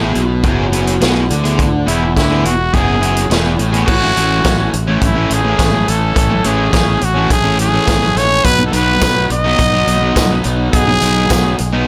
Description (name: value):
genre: indie rock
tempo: 105 BPM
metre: 4/4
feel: straight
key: unclear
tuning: A4 = 439 Hz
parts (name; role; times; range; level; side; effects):
- fuzz guitar; riff; 0.0-11.9 s; E2 to D#4; -22 LUFS; equal; distortion
- thick fuzz guitar; riff; 0.0-11.9 s; E3 to G#4; -22 LUFS; equal; distortion, subtle chorus
- growling fingered electric bass; bass; 0.0-11.8 s; E1 to D2; -20 LUFS; equal; overdrive
- vintage drum kit; drums; 0.2-11.7 s; crash cymbal, hi-hat, kick drum, snare drum; -20 LUFS; equal; none
- growling trumpet; melody; 1.9-11.6 s; E4 to D#5; -19 LUFS; equal; tape echo
- tambourine; percussion; 9.0-11.4 s; none; -30 LUFS; equal; none
room: light reverb, studio reverb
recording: none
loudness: -14 LUFS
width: mono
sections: 0.0-3.9 A section; 3.9-11.9 B section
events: none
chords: 0.0 E; 3.9 Amaj7; 8.4 B